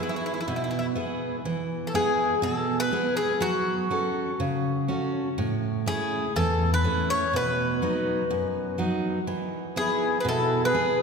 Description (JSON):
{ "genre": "greek folk, Greek bouzouki band", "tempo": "123 BPM", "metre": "4/4", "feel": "straight", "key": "E major", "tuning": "A4 = 440 Hz", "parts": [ { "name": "Greek bouzouki", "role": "melody", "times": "0.0-11.0 s", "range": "E4 to C#5", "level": "-27 LUFS", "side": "left 2 dB", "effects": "none" }, { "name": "picked steel-string acoustic guitar", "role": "accompaniment", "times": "0.0-11.0 s", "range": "E2 to A4", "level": "-27 LUFS", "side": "right 2 dB", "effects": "none" }, { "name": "accordion", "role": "second line", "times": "9.8-11.0 s", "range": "E4 to G#4", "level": "-29 LUFS", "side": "left 2 dB", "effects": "light tremolo tuning" } ], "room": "wet church reverb, RT60 3.8 s", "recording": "recorded in a church or concert hall", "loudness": "-24 LUFS", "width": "side -5 dB against mid", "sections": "0.0-1.5 A section; 1.5-11.0 A section", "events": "none", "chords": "0.0 E; 3.4 F#m; 5.4 A; 7.3 B; 9.3 E" }